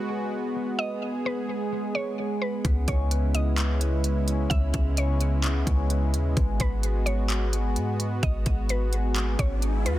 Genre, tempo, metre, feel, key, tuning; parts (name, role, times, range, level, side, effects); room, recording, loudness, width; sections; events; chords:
hip hop, atmospheric cloud-rap; 129 BPM; 4/4; half-time; A4 = 440 Hz
mallet-like synth pluck; melody; 0.0-10.0 s; B4 to E5; -34 LUFS; equal; chorus, low-pass filter, tape echo
warm analog pad; sustained chords; 0.0-10.0 s; C#3 to G#4; -30 LUFS; right 2 dB; chorus, sidechain pumping
concert harp; arpeggios; 0.0-10.0 s; G#3 to B4; -36 LUFS; left 8 dB; low-pass filter, tape echo
clean 808-style bass; bass; 2.6-10.0 s; G#1 to G#2; -25 LUFS; equal
trap drum kit; drums; 2.6-10.0 s; handclaps, hi-hat, kick drum; -28 LUFS; equal
riser; sound effects; 8.9-10.0 s; -37 LUFS; equal
little or no reverb; dense, heavily limited modern master; -23 LUFS; side -14 dB against mid
0.0-10.0 A section
riser 8.9-10.0
0.0 G#m7; 2.6 C#m7; 6.4 G#m7